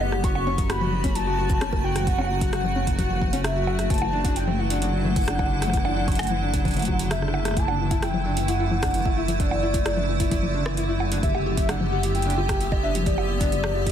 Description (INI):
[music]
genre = IDM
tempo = 131 BPM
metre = 4/4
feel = straight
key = unclear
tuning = A4 = 437 Hz
[part]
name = warbly nostalgic lead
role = melody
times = 0.0-13.9 s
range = D5 to C#6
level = -29 LUFS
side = equal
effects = lush chorus, digital delay
[part]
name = icy glass pad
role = sustained chords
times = 0.0-13.9 s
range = C#3 to G4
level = -30 LUFS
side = right 2 dB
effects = chorus, built-in reverb
[part]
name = felt-muted upright piano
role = arpeggios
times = 0.0-13.9 s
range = E3 to G4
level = -30 LUFS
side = left 4 dB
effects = tape echo
[part]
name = dark detuned saw bass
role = bass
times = 0.0-13.9 s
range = F#1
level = -26 LUFS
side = equal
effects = none
[part]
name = booming analog drum machine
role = drums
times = 0.0-13.9 s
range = bongos, congas, hi-hat, rim click, shaker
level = -30 LUFS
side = equal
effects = soft clipping on snare
[part]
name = electronic kick drum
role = drums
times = 0.2-13.9 s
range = none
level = -26 LUFS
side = equal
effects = none
[part]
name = flickering grainy texture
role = texture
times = 7.9-13.9 s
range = E5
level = -39 LUFS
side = right 4 dB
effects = built-in reverb
[sound]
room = digital ambience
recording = dense, heavily limited modern master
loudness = -21 LUFS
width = side -9 dB against mid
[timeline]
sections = 0.0-7.6 A section; 7.6-13.9 A section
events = drum fill 7.2-7.6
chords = 0.2 F#m; 3.9 Dadd9/F#; 11.2 G/F#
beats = | 0.24 0.70 1.16 1.61 | 2.07 2.53 2.99 3.44 | 3.90 4.36 4.82 5.28 | 5.74 6.19 6.65 7.11 | 7.57 8.03 8.48 8.94 | 9.40 9.86 10.31 10.77 | 11.23 11.69 12.15 12.61 | 13.06 13.52